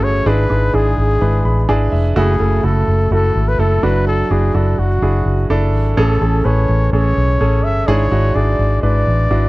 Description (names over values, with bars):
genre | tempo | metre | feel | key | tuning
piano-driven pop | 126 BPM | 4/4 | straight | unclear | A4 = 441 Hz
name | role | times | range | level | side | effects
breathy trumpet | melody | 0.0-9.5 s | F#4 to E5 | -20 LUFS | left 1 dB | slapback echo
clear concert grand piano | accompaniment | 0.0-9.5 s | G#2 to B5 | -18 LUFS | right 2 dB | none
vintage muted fingered electric bass | bass | 0.0-9.5 s | F1 to B1 | -15 LUFS | equal | none
room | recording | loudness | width
light reverb | dry, close 1970s-style studio recording | -13 LUFS | side -20 dB against mid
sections
0.0-9.5 A section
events
grand piano fill 1.2-2.2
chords
0.3 E7/G#; 2.2 F#m7; 3.8 Dadd9/F#; 6.0 Amaj7; 7.9 E7/G#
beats
| 0.26 0.74 1.21 1.69 | 2.17 2.64 3.12 3.60 | 4.07 4.55 5.02 5.50 | 5.97 6.45 6.93 7.40 | 7.88 8.36 8.83 9.31